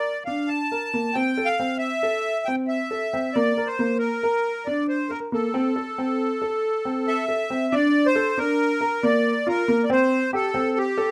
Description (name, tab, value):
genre	contemporary instrumental, contemporary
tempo	137 BPM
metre	5/4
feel	straight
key	unclear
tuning	A4 = 439 Hz
part	accordion	melody	0.0-11.1 s	G4 to A5	-26 LUFS	equal	light tremolo tuning
part	clear grand piano	arpeggios	0.0-11.1 s	Bb3 to Bb4	-26 LUFS	equal	none
room	moderate studio reverb, RT60 0.7 s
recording	close, detailed microphones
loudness	-23 LUFS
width	mono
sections	0.0-7.7 A section; 7.7-11.1 A section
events	none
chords	0.0 Bbmaj7; 1.2 Am; 3.4 Bbadd9; 5.5 Am; 7.7 Bb; 9.9 Am7